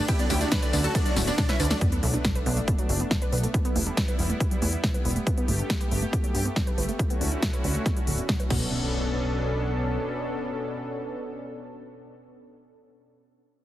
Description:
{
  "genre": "uplifting trance",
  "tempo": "139 BPM",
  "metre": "4/4",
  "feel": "straight",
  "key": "B minor",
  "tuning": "A4 = 442 Hz",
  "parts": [
    { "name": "dense compressed supersaw", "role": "melody", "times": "0.0-1.8 s", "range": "C#4 to B4", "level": "-31 LUFS", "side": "right 1 dB", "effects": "sidechain pumping, ping-pong delay" },
    { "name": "plucky unison lead", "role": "second line", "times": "0.0-1.8 s", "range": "D5 to B5", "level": "-36 LUFS", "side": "left 1 dB", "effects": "phaser, sidechain pumping, ping-pong delay" },
    { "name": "lush unison pad", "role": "sustained chords", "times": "0.0-12.5 s", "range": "B2 to A4", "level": "-32 LUFS", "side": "equal", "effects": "chorus, sidechain pumping" },
    { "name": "wide unison pluck", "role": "arpeggios", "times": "0.1-8.9 s", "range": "B2 to B4", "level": "-34 LUFS", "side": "right 3 dB", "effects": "sidechain pumping, ping-pong delay" },
    { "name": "big-room dance drum kit", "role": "drums", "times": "0.1-8.6 s", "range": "crash cymbal, hi-hat, ride cymbal, snare drum, tambourine", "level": "-31 LUFS", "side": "equal", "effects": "overdrive" },
    { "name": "electronic kick drum", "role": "drums", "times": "0.1-8.6 s", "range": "none", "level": "-26 LUFS", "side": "equal", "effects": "overdrive" },
    { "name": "plucky analog bass", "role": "bass", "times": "0.3-10.0 s", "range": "D1 to G2", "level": "-27 LUFS", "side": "equal", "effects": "sidechain pumping" },
    { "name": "sub drop and impact", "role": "sound effects", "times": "1.8-3.5, 8.5-12.6 s", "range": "none", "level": "-35 LUFS", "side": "equal", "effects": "none" }
  ],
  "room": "light reverb, digital ambience",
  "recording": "heavily compressed radio sound, lossy compression artefacts",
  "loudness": "-23 LUFS",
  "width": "side -14 dB against mid",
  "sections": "0.0-1.8 A section; 1.8-8.7 B section; 8.7-12.2 C section",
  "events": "drop 0.0-1.8; drum fill 1.2-1.8; impact 1.8-3.5; filter sweep on analog synth bass 1.8-8.7; filter sweep on synth arpeggio sound 1.8-8.7",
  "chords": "0.1 Dmaj7; 1.8 Bm7; 3.5 Em; 5.3 Gadd9; 7.0 Dmaj7; 8.5 Bm7",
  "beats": "| 0.09 0.52 0.95 1.38 | 1.81 2.25 2.68 3.11 | 3.54 3.97 4.40 4.83 | 5.27 5.70 6.13 6.56 | 6.99 7.42 7.86 8.29 | 8.72 9.15 9.58 10.02 | 10.45 10.88 11.31 11.74"
}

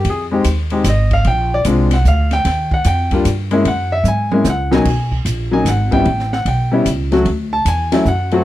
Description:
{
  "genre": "jazz, small-group swing and bop",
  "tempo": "150 BPM",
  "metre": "3/4",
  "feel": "swing 65% on 8ths",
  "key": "unclear",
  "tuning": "A4 = 436 Hz",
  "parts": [
    { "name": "warm baby grand piano", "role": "accompaniment", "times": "0.0-8.4 s", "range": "Cb3 to A5", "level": "-16 LUFS", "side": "left 2 dB", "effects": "none" },
    { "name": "upright bass", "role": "bass", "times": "0.0-8.4 s", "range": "Ab1 to Ab2", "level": "-17 LUFS", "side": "right 1 dB", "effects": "none" },
    { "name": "open jazz drum kit", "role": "drums", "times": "0.0-8.4 s", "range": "crash cymbal, hi-hat, kick drum, ride cymbal, snare drum, toms", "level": "-24 LUFS", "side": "right 1 dB", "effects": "none" }
  ],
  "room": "studio reverb",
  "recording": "dry, close 1970s-style studio recording",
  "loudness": "-13 LUFS",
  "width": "side -14 dB against mid",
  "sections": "0.0-4.9 A section; 4.9-8.4 A section",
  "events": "drum fill 4.1-4.9",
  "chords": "0.1 Fm9; 1.3 Bb7; 2.5 Eb; 3.7 Gb7; 4.9 Bmaj7(no3); 6.1 A7; 7.3 D",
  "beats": "| 0.05 0.45 0.85 | 1.25 1.66 2.06 | 2.46 2.86 3.26 | 3.66 4.06 4.46 | 4.86 5.26 5.66 | 6.06 6.46 6.86 | 7.26 7.66 8.06"
}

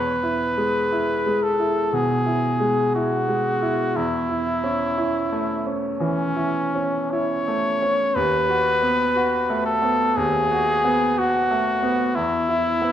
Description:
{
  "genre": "classical, romantic duo for trumpet and grand piano",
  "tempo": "59 BPM",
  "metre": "4/4",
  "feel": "rubato",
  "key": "E major",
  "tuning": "A4 = 442 Hz",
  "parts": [
    { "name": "bright trumpet", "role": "melody", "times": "0.0-12.9 s", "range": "C#4 to C#5", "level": "-22 LUFS", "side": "left 1 dB", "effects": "none" },
    { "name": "bright baby grand piano", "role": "accompaniment", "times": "0.0-12.9 s", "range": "D#2 to F#4", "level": "-23 LUFS", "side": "equal", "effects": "none" }
  ],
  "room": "moderate recital hall reverb, RT60 1.5 s",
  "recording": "none",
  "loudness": "-19 LUFS",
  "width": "side -10 dB against mid",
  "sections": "0.0-12.9 A section",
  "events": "none",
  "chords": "0.0 E; 4.0 A/E; 8.2 B7/D#; 12.2 E5",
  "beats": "0.93 1.94 2.95 | 3.97 4.98 6.00 7.12 | 8.16 9.16 10.18 11.18 | 12.17"
}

